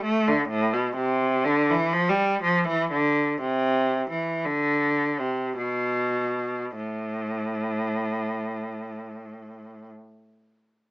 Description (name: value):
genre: classical, baroque-style suite movement for unaccompanied cello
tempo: 48-66 BPM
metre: 3/4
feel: rubato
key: A minor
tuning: A4 = 440 Hz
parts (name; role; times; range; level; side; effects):
- rich cello; solo; 0.0-9.9 s; A2 to A3; -23 LUFS; equal; none
room: light reverb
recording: small speaker sound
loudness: -22 LUFS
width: side -21 dB against mid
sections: 0.0-6.8 A section; 6.8-10.2 B section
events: slowing down 0.0-6.8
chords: none